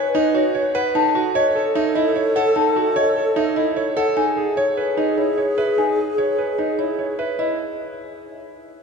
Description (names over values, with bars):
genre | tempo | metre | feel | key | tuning
classical, minimalist pattern music | 149 BPM | 4/4 | straight | unclear | A4 = 440 Hz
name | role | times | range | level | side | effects
hollow alto flute | second line | 0.0-7.1 s | G#4 to B4 | -24 LUFS | equal | none
warm concert grand piano | arpeggios | 0.0-7.6 s | D#4 to C#5 | -21 LUFS | right 4 dB | none
marimba with medium mallets | melody | 0.1-7.6 s | C#5 to A5 | -23 LUFS | left 6 dB | none
room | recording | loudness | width
wet cathedral reverb, RT60 5.5 s | recorded in a church or concert hall | -17 LUFS | side -5 dB against mid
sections
0.0-7.4 A section; 7.4-8.8 B section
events
none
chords
0.0 G#m7 (rootless); 0.9 F#m7; 4.2 E6; 7.4 N.C.